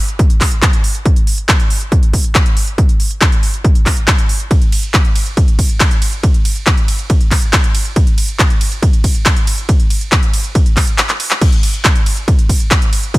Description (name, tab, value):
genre	trance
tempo	139 BPM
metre	4/4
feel	straight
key	none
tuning	none
part	techno drum kit	drums	0.1-13.2 s	crash cymbal, handclaps, hi-hat, ride cymbal	-17 LUFS	equal	sidechain pumping on hats, sidechain pumping on cymbals
part	electronic kick drum	drums	0.2-13.2 s	none	-11 LUFS	equal	none
room	little or no reverb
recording	none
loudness	-10 LUFS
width	side -19 dB against mid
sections	0.0-13.2 A section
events	kick drops out 11.0-11.4; drum fill 11.1-11.4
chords	none